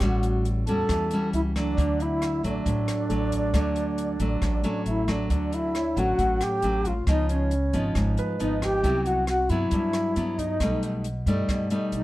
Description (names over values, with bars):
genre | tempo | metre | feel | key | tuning
bossa nova | 136 BPM | 4/4 | straight | D major | A4 = 440 Hz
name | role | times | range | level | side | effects
wooden-headed alto flute | melody | 0.0-12.0 s | C#4 to A4 | -27 LUFS | equal | none
breathy bright bansuri | second line | 0.0-12.0 s | C#5 to A5 | -35 LUFS | right 2 dB | none
nylon-string guitar | accompaniment | 0.0-12.0 s | G2 to F#4 | -28 LUFS | left 1 dB | none
warm concert grand piano | accompaniment | 0.0-12.0 s | A4 to E5 | -39 LUFS | right 3 dB | none
upright bass | bass | 0.0-12.0 s | G#1 to G2 | -28 LUFS | equal | none
compact cocktail drum kit | drums | 0.0-12.0 s | hi-hat, kick drum, rim click | -31 LUFS | equal | none
room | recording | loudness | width
light reverb | dark, warm production | -23 LUFS | side -16 dB against mid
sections
0.0-5.3 A section; 5.3-12.0 A section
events
none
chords
0.0 A6; 1.8 D; 5.3 Dmaj7; 7.1 C#9; 8.8 Cmaj7#11; 10.6 B7alt